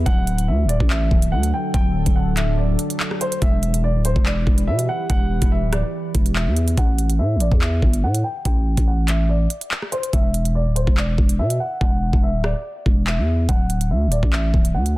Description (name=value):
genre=hip hop, drill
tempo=143 BPM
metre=4/4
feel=half-time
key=E minor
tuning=A4 = 440 Hz
part: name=dark baby grand piano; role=melody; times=0.0-14.9 s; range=C5 to G5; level=-27 LUFS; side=equal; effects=low-pass filter, tape echo
part: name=deep dark ambient pad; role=sustained chords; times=0.0-6.7 s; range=D3 to B4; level=-28 LUFS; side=equal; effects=chorus, built-in reverb
part: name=growling 808-style bass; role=bass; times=0.0-14.9 s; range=C1 to B2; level=-20 LUFS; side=equal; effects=none
part: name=drill drum kit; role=drums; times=0.1-14.9 s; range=handclaps, hi-hat, kick drum, rim click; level=-19 LUFS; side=equal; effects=none
room=little or no reverb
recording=dense, heavily limited modern master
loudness=-17 LUFS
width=side -18 dB against mid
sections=0.0-6.8 A section; 6.8-15.0 B section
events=hi-hats muted 11.8-13.5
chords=0.1 D; 3.4 Em; 6.8 A5; 10.1 E5; 13.5 D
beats=| 0.06 0.48 0.90 1.32 | 1.74 2.16 2.58 3.00 | 3.42 3.84 4.26 4.68 | 5.10 5.52 5.94 6.36 | 6.78 7.20 7.62 8.03 | 8.45 8.87 9.29 9.71 | 10.13 10.55 10.97 11.39 | 11.81 12.23 12.65 13.07 | 13.49 13.91 14.33 14.75